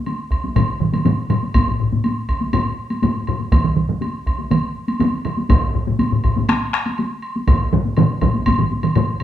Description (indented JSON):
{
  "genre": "japanese traditional, taiko drum ensemble",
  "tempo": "121 BPM",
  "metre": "4/4",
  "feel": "straight",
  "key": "none",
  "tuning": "none",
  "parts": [
    { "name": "taiko ensemble", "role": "percussion", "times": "0.1-9.1 s", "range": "none", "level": "-22 LUFS", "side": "left 1 dB", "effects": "none" },
    { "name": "woodblock", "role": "percussion", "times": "0.1-9.2 s", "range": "none", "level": "-27 LUFS", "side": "equal", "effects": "none" },
    { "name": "solo taiko drums", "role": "percussion", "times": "0.3-8.6 s", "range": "none", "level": "-20 LUFS", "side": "right 1 dB", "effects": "none" },
    { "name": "taiko ensemble", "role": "percussion", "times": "0.6-9.2 s", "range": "none", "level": "-20 LUFS", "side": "left 4 dB", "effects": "none" },
    { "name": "taiko ensemble", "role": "percussion", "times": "0.6-9.1 s", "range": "none", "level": "-20 LUFS", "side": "right 4 dB", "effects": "none" }
  ],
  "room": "wet large studio reverb, RT60 0.8 s",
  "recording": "band playing live in one room",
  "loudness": "-16 LUFS",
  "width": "side -11 dB against mid",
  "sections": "0.0-9.2 A section",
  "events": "none",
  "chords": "none"
}